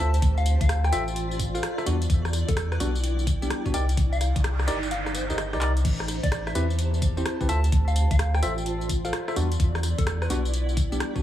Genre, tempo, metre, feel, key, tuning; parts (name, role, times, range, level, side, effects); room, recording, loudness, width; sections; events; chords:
UK garage, two-step garage; 128 BPM; 4/4; swing 65% on 16ths; A4 = 442 Hz
soft struck synth lead; melody; 0.0-10.4 s; A4 to A5; -34 LUFS; left 2 dB; chorus, cassette tape, dub echo
tine electric piano; stabs; 0.0-11.2 s; G3 to F5; -32 LUFS; equal; dub echo
saturated sub bass; bass; 0.0-11.0 s; G1 to E2; -25 LUFS; equal
granular cloud pad; texture; 0.0-11.2 s; Eb4 to A5; -35 LUFS; right 1 dB; built-in reverb, sidechain pumping
garage drum kit; drums; 0.1-11.2 s; crash cymbal, handclaps, hi-hat, rim click, tambourine; -33 LUFS; equal
electronic kick drum; drums; 0.2-11.2 s; -25 LUFS; equal
noise sweep; sound effects; 4.2-5.8 s; -36 LUFS; right 3 dB
little or no reverb; heavily compressed radio sound, multiband compression; -22 LUFS; side -12 dB against mid
0.0-11.2 A section
noise sweep 4.2-5.8; kick drops out 4.9-5.8; drum fill 5.6
0.0 Dm7; 1.9 Em7; 3.7 Cm7; 5.8 Am7; 7.5 Dm7; 9.4 Em7